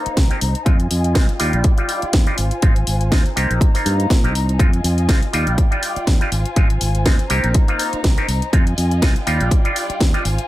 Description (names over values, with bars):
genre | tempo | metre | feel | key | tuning
filtered disco house | 122 BPM | 4/4 | swing 55% on 16ths | unclear | A4 = 440 Hz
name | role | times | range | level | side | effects
auto-wah clav | accompaniment | 0.0-10.2 s | G3 to G4 | -24 LUFS | right 1 dB | phaser, sidechain pumping, low-pass filter
rich chamber violin section | sustained chords | 0.0-10.5 s | Eb4 to Bb5 | -26 LUFS | left 2 dB | sidechain pumping, low-pass filter
modern bright fingered electric bass | bass | 0.1-10.4 s | Ab1 to Bb2 | -20 LUFS | equal | sidechain pumping, low-pass filter
house drum kit | drums | 0.1-10.5 s | hi-hat, snare drum | -24 LUFS | left 1 dB | sidechain pumping on hats
tambourine | percussion | 0.1-10.5 s | none | -48 LUFS | right 7 dB | none
electronic kick drum | drums | 0.2-10.1 s | none | -15 LUFS | equal | none
room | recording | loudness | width
little or no reverb | none | -15 LUFS | side -15 dB against mid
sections
0.0-10.5 A section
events
none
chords
0.0 Cm7; 0.7 Fm7; 1.4 Ebmaj9; 2.4 Ab6; 3.4 Cm7; 4.6 Fm7; 5.3 Ebmaj9; 6.3 Ab6; 7.3 Cm7; 8.5 Fm7; 9.3 Ebmaj9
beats
0.17 | 0.66 1.15 1.65 2.14 | 2.63 3.12 3.61 4.11 | 4.60 5.09 5.58 6.07 | 6.56 7.06 7.55 8.04 | 8.53 9.02 9.52 10.01